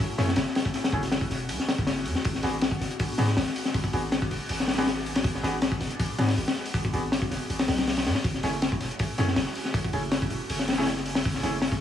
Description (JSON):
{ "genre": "drum and bass, jungle", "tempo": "160 BPM", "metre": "4/4", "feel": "straight", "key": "F# minor", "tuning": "A4 = 444 Hz", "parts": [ { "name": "airy breathy pad", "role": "sustained chords", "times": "0.0-11.8 s", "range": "G#3 to G#4", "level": "-34 LUFS", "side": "left 2 dB", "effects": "chorus, phaser" }, { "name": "crunchy breakbeat drum kit", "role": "drums", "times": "0.0-11.8 s", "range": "hi-hat, kick drum, snare drum", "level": "-26 LUFS", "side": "left 2 dB", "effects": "none" }, { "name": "warm baby grand piano", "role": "stabs", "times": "0.2-11.5 s", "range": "A3 to G#4", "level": "-34 LUFS", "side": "right 1 dB", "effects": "dub echo" }, { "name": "long sustained 808-style bass", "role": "bass", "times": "0.2-11.8 s", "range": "E1 to G#2", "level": "-30 LUFS", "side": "equal", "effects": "none" } ], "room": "small room ambience", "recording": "vinyl crackle", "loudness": "-24 LUFS", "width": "side -10 dB against mid", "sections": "0.0-11.8 A section", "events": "none", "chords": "0.0 F#m7; 2.2 G#m7b5; 8.2 F#m7" }